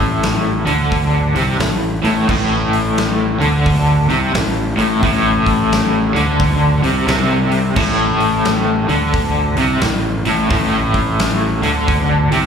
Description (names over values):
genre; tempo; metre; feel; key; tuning
blues rock power trio and southern rock; 88 BPM; 4/4; swing 64% on 8ths; A minor; A4 = 438 Hz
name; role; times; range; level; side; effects
crunchy overdriven guitar; riff; 0.0-12.5 s; A2 to D3; -15 LUFS; equal; tremolo
fuzz fingered electric bass; bass; 0.0-12.5 s; A1 to D2; -19 LUFS; equal; overdrive
huge arena drum kit; drums; 0.2-12.4 s; crash cymbal, hi-hat, kick drum, snare drum; -21 LUFS; equal; none
room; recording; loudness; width
small room ambience; live gig heard through the venue's PA, club reverb; -13 LUFS; side -7 dB against mid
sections
0.0-12.5 A section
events
none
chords
0.0 Am